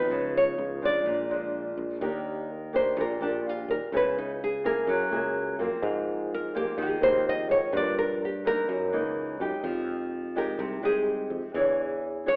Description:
bossa nova; 126 BPM; 4/4; straight; Eb major; A4 = 440 Hz
nylon-string guitar; melody; 0.0-12.4 s; D4 to Eb5; -29 LUFS; equal
nylon-string guitar; accompaniment; 0.0-12.4 s; Gb2 to C#5; -32 LUFS; equal
sustaining fretless electric bass; bass; 0.0-12.4 s; A#1 to Ab2; -36 LUFS; equal
moderate recital hall reverb, RT60 1.3 s; recorded in a church or concert hall, telephone sound; -28 LUFS; mono
0.0-2.0 A section; 2.0-12.4 B section
nylon-string guitar solo 2.0-12.4
0.1 C#9; 1.1 A#7; 2.0 Ebmaj7; 3.9 Dbm7; 4.9 Gb9; 5.8 Ab69; 7.7 Gm7; 8.7 Gb13; 9.6 Fm9; 11.5 E6
| 0.10 0.58 1.06 1.54 | 2.01 2.49 2.97 3.44 | 3.92 4.40 4.87 5.35 | 5.83 6.30 6.78 7.26 | 7.73 8.21 8.69 9.16 | 9.64 10.12 10.59 11.07 | 11.55 12.02

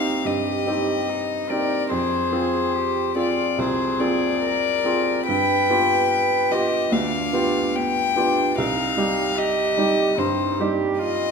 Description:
classical, slow romantic movement for piano trio; 73 BPM; 4/4; rubato; C minor; A4 = 440 Hz
rich violin; melody; 0.0-11.3 s; C5 to G5; -23 LUFS; left 8 dB
warm cello; second line; 0.0-11.3 s; B3 to B4; -26 LUFS; right 8 dB
bright baby grand piano; accompaniment; 0.0-11.3 s; C2 to Ab4; -23 LUFS; right 2 dB
wet recital hall reverb, RT60 1.5 s; -19 LUFS; side -5 dB against mid
0.0-11.3 A section
0.0 Cm; 1.9 Fm; 5.3 G7; 8.6 Cm
0.26 1.09 | 1.91 2.74 3.58 4.42 | 5.28 6.11 6.93 7.75 | 8.57 9.37 10.17 10.98

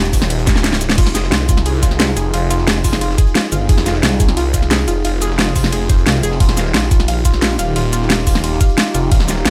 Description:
dark technical drum and bass; 177 BPM; 4/4; straight; F minor; A4 = 440 Hz
dark analog pad; sustained chords; 0.0-9.5 s; Eb4 to Ab4; -27 LUFS; equal; chorus, sidechain pumping
phased detuned saw bass; bass; 0.0-9.5 s; Eb1 to C2; -20 LUFS; equal; phaser
dubstep drum kit; drums; 0.0-9.5 s; cabasa, crash cymbal, hi-hat, ride cymbal, snare drum; -20 LUFS; equal; small room ambience
crunchy breakbeat drum kit; drums; 0.1-9.5 s; hi-hat, snare drum; -31 LUFS; equal
electronic kick drum; drums; 0.1-9.2 s; -16 LUFS; equal; small room ambience
analog pluck; arpeggios; 1.0-9.5 s; F4 to F5; -26 LUFS; equal; chorus, sidechain pumping, dub echo
little or no reverb; -15 LUFS; mono
0.0-9.5 A section
drum fill 0.5-1.0
0.0 Ebadd9; 1.0 Fm7; 6.4 Ebadd9
0.30 0.64 | 0.98 1.32 1.66 2.00 | 2.34 2.67 3.01 3.35 | 3.69 4.03 4.37 4.71 | 5.05 5.39 5.73 6.07 | 6.40 6.74 7.08 7.42 | 7.76 8.10 8.44 8.78 | 9.12 9.45

